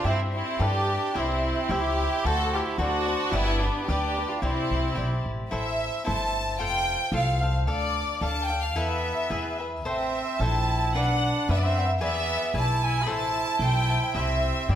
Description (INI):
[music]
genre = mexican folk, mariachi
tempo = 111 BPM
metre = 2/4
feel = rubato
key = C major, A minor from 5.5 s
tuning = A4 = 439 Hz
[part]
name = rich studio violin section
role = melody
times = 0.0-14.8 s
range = D4 to B5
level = -28 LUFS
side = equal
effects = none
[part]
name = clear trumpet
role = second line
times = 0.0-5.2, 8.8-14.8 s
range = B3 to G#4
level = -32 LUFS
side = right 4 dB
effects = none
[part]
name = cavaquinho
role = accompaniment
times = 0.0-14.8 s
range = D4 to A5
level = -31 LUFS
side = left 2 dB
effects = none
[part]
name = upright bass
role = bass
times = 0.0-14.8 s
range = F1 to G2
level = -28 LUFS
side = equal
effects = none
[sound]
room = moderate recital hall reverb, RT60 1.4 s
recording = none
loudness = -23 LUFS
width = side -10 dB against mid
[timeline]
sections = 0.0-5.5 A section; 5.5-14.2 B section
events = none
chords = 0.1 C/G; 0.6 Gadd9; 1.2 C; 2.3 D7; 3.3 G; 4.4 Cadd9; 5.5 Am; 6.6 F; 7.7 Dm; 8.8 Esus4; 9.3 E; 9.9 Am7; 11.0 Bm; 12.0 E7; 13.1 Am; 14.2 C